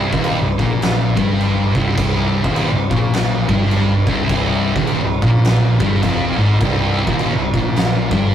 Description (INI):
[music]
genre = stoner and doom metal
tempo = 104 BPM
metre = 4/4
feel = swing 61% on 8ths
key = C minor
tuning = A4 = 440 Hz
[part]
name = thick fuzz guitar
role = riff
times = 0.0-8.3 s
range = C2 to Bb2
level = -16 LUFS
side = equal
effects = distortion
[part]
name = growling fingered electric bass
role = bass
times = 0.0-8.3 s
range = C1 to Bb1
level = -23 LUFS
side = right 1 dB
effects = overdrive
[part]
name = oversized low-tuned drum kit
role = drums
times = 0.1-8.2 s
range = crash cymbal, kick drum, snare drum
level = -20 LUFS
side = right 1 dB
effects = none
[sound]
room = wet small room ambience, RT60 0.5 s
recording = rough rehearsal-room recording, warm saturation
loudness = -14 LUFS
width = side -10 dB against mid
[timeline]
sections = 0.0-8.3 A section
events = none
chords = 0.0 Cm